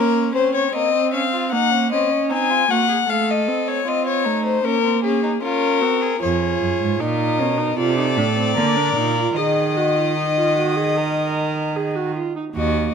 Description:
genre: classical, baroque-style fugue for string quartet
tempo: 77 BPM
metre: 4/4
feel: straight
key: Bb minor, Eb minor from 6.2 s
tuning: A4 = 436 Hz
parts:
  - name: rich violin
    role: melody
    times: 0.0-12.9 s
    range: Ab4 to Ab5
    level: -20 LUFS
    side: left 8 dB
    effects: none
  - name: warm violin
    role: second line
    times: 0.0-12.9 s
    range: Bb3 to Eb5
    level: -26 LUFS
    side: left 1 dB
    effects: none
  - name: warm viola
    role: accompaniment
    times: 0.0-12.9 s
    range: A3 to Bb4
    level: -23 LUFS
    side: right 6 dB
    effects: none
  - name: rich cello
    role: bass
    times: 6.2-12.9 s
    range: Eb2 to Eb3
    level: -22 LUFS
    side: right 5 dB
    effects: none
room: light reverb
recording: close, detailed microphones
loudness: -17 LUFS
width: side -6 dB against mid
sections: 0.0-6.2 A section; 6.2-12.6 B section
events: none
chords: 0.0 Bbm; 3.1 F7/A; 4.6 Bbm; 6.2 Fm7b5; 7.8 Am/C; 8.6 Bb/D; 9.4 Ebm

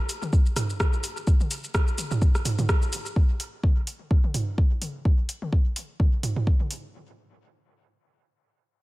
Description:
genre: techno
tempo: 127 BPM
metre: 4/4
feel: swing 56% on 16ths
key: none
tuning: none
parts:
  - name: deep house drum kit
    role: drums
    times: 0.1-6.8 s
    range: hi-hat, rim click, shaker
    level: -31 LUFS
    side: equal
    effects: small room ambience, dub echo
  - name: electronic toms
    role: percussion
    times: 0.2-6.7 s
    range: none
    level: -31 LUFS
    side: right 2 dB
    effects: sidechain pumping on toms, small room ambience, dub echo
  - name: electronic kick drum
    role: drums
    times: 0.3-6.6 s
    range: none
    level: -21 LUFS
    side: equal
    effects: small room ambience
room: digital ambience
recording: none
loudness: -22 LUFS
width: side -20 dB against mid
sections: 0.0-3.2 A section; 3.2-6.9 B section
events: none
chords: none

